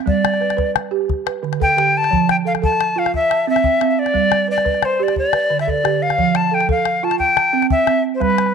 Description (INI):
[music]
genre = west african traditional, West African string and xylophone music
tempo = 118 BPM (dotted quarters)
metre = 12/8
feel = straight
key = F lydian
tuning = A4 = 440 Hz
[part]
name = balafon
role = arpeggios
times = 0.0-8.5 s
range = D3 to A5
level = -20 LUFS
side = right 12 dB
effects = none
[part]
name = bright jazz flute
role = melody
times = 0.1-8.5 s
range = B4 to A5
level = -16 LUFS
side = left 3 dB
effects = none
[part]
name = calabash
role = percussion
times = 0.1-8.5 s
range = none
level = -22 LUFS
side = left 6 dB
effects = none
[sound]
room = moderate spring reverb, RT60 1.5 s, small room ambience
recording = 1960s-style stereo with parts hard left and right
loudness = -15 LUFS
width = side -6 dB against mid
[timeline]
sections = 0.0-8.5 A section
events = none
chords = 0.1 G; 1.1 D5; 2.1 F; 3.1 C; 4.1 G; 5.2 D5; 6.2 F; 7.2 C